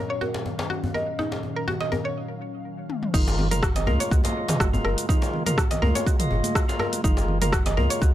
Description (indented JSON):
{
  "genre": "afro house",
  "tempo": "123 BPM",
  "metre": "4/4",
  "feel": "swing 54% on 16ths",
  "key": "unclear",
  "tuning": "A4 = 443 Hz",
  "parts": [
    { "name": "marimba with soft mallets", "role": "melody", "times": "0.0-2.1 s", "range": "Bb4 to Eb5", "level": "-34 LUFS", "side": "right 1 dB", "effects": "analog delay" },
    { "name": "ethereal airy pad", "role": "sustained chords", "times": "0.0-8.1 s", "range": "Bb2 to F5", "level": "-34 LUFS", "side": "left 1 dB", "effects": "ensemble chorus, built-in reverb, sidechain pumping" },
    { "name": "mallet-like synth pluck", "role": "arpeggios", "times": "0.0-8.1 s", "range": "Eb4 to Eb5", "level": "-30 LUFS", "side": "equal", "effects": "chorus, cassette tape, sidechain pumping, analog delay" },
    { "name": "djembe", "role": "percussion", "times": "0.2-8.1 s", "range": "none", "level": "-31 LUFS", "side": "left 2 dB", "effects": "none" },
    { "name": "deep house drum kit", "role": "drums", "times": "2.9-8.1 s", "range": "cabasa, crash cymbal, hi-hat, rim click, toms", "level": "-28 LUFS", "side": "equal", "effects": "none" },
    { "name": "percussive tonewheel organ", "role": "stabs", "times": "3.1-8.1 s", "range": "Ab3 to Eb5", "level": "-30 LUFS", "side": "equal", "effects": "overdrive, stopped rotary speaker, sidechain pumping, analog delay" },
    { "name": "warm sub bass", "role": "bass", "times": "3.1-8.1 s", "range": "Gb1 to Db2", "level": "-25 LUFS", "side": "equal", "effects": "sidechain pumping" },
    { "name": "electronic kick drum", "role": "drums", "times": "3.1-8.1 s", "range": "none", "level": "-23 LUFS", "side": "equal", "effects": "none" },
    { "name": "congas", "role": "percussion", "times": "3.1-8.1 s", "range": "none", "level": "-32 LUFS", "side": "right 3 dB", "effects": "none" }
  ],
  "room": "little or no reverb",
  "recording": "dry, gritty hardware recording",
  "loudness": "-21 LUFS",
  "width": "side -13 dB against mid",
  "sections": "0.0-3.1 A section; 3.1-8.1 B section",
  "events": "break 2.2-3.1; drum fill 2.9; drop 3.1-8.1",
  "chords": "0.0 Ebm9; 3.1 Gbmaj9"
}